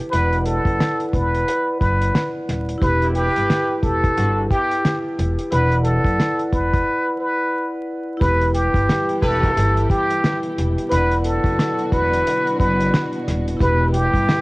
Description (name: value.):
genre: hip hop, boom-bap hip-hop.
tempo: 89 BPM.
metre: 4/4.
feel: swing 60% on 16ths.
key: E minor.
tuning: A4 = 440 Hz.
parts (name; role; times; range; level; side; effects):
vibraphone with medium hard mallets; accompaniment; 0.0-14.4 s; E4 to F#5; -24 LUFS; equal; high-pass filter, low-pass filter, cassette tape.
cloth-damped thuddy drum kit; drums; 0.0-14.4 s; hi-hat, kick drum, snare drum; -22 LUFS; equal; none.
trumpet with plunger mute; melody; 0.1-14.4 s; G4 to B4; -21 LUFS; equal; high-pass filter, low-pass filter.
upright bass; bass; 0.1-14.3 s; D#1 to G1; -21 LUFS; equal; tube saturation.
bright trumpet section; stabs; 3.0-4.8, 9.2-9.7 s; B3 to B4; -30 LUFS; left 1 dB; high-pass filter, low-pass filter, cassette tape, analog delay.
warm studio string section; sustained chords; 8.2-14.4 s; B2 to G4; -30 LUFS; equal; high-pass filter, low-pass filter, cassette tape.
room: small room ambience.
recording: home recording on cassette, vinyl crackle.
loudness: -17 LUFS.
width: side -23 dB against mid.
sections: 0.0-8.2 A section; 8.2-14.4 B section.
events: break 6.9-8.2.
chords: 0.1 Bm/E; 2.8 Em; 5.5 Bm/E; 8.2 Em; 10.9 Bm/E; 13.6 Em.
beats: | 0.12 0.80 1.47 2.14 | 2.82 3.49 4.17 4.84 | 5.51 6.19 6.86 7.54 | 8.21 8.89 9.56 10.23 | 10.91 11.58 12.26 12.93 | 13.61 14.28.